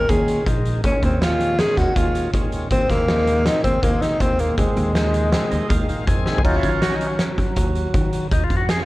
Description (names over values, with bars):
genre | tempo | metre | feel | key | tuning
progressive instrumental, band music in an uneven meter | 161 BPM | 5/4 | straight | Eb dorian | A4 = 440 Hz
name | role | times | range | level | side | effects
breathy tenor saxophone | melody | 0.0-6.0 s | Ab3 to Bb4 | -21 LUFS | equal | tape echo
bright tonewheel organ | accompaniment | 0.0-8.9 s | Bb2 to Ab5 | -25 LUFS | equal | overdrive, slow rotary speaker
upright bass | bass | 0.0-8.9 s | Bb1 to Eb3 | -23 LUFS | equal | none
oversized low-tuned drum kit | drums | 0.1-8.8 s | crash cymbal, hi-hat, kick drum, snare drum, toms | -21 LUFS | equal | none
room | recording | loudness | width
moderate plate reverb, RT60 1.2 s, small room ambience | worn, warbling old tape, cassette tape, warbly pitch drift | -17 LUFS | side -18 dB against mid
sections
0.0-6.4 A section; 6.4-8.9 B section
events
tonewheel organ fill 5.3-6.4; drum fill 6.3; tonewheel organ solo 6.4-8.9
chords
0.0 Eb7(no3); 0.8 Bbm7/Eb; 2.7 Abadd9/Eb; 4.6 Fm/Eb; 6.4 Ebm7; 8.3 Bb7sus4 (rootless)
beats
0.10 0.47 | 0.84 1.22 1.59 1.96 2.34 | 2.71 3.08 3.46 3.83 4.21 | 4.58 4.95 5.33 5.70 6.07 | 6.45 6.82 7.19 7.57 7.94 | 8.31 8.69